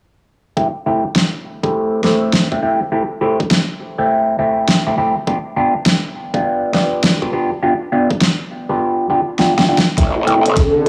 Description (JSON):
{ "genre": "glitch hop", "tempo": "102 BPM", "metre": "4/4", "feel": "swing 63% on 16ths", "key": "A minor", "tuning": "A4 = 440 Hz", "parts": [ { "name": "overdriven clav", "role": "stabs", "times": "0.6-10.4 s", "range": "A3 to G4", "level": "-19 LUFS", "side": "equal", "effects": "phaser, sidechain pumping, low-pass filter, analog delay" }, { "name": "electronic kick drum", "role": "drums", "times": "0.6-10.7 s", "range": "none", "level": "-20 LUFS", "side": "equal", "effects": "overdrive, high-pass filter on kick" }, { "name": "dubstep drum kit", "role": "drums", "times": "1.2-10.9 s", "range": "hi-hat, snare drum", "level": "-18 LUFS", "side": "equal", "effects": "overdrive" }, { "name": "growl bass", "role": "bass", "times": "10.0-10.9 s", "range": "G1 to A1", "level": "-18 LUFS", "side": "equal", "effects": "chorus, high-pass filter" }, { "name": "riser", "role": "sound effects", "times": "10.2-10.9 s", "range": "none", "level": "-24 LUFS", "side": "equal", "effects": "none" }, { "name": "granular cloud pad", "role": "texture", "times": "10.2-10.9 s", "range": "A4", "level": "-20 LUFS", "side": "equal", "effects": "built-in reverb, sidechain pumping" } ], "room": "moderate plate reverb, RT60 1.7 s, digital ambience", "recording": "dry, gritty hardware recording", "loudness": "-16 LUFS", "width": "mono", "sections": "0.6-10.0 A section", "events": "drum fill 9.4-10.0, 10.0-10.9; riser 10.2-10.9", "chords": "0.6 Am7; 5.3 G7; 10.0 Am7" }